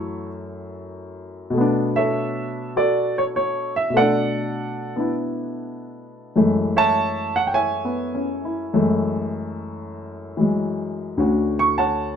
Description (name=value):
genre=solo jazz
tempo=100 BPM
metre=4/4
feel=swing 69% on 8ths, rubato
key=F# minor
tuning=A4 = 440 Hz
part: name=warm baby grand piano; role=solo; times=0.0-12.2 s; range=D2 to C#6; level=-20 LUFS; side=equal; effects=none
room=moderate club reverb, RT60 0.8 s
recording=none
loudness=-19 LUFS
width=side -7 dB against mid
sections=0.0-12.2 A section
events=none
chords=0.0 F#m7; 1.5 Bm9; 6.4 F#m9; 11.2 Dmaj7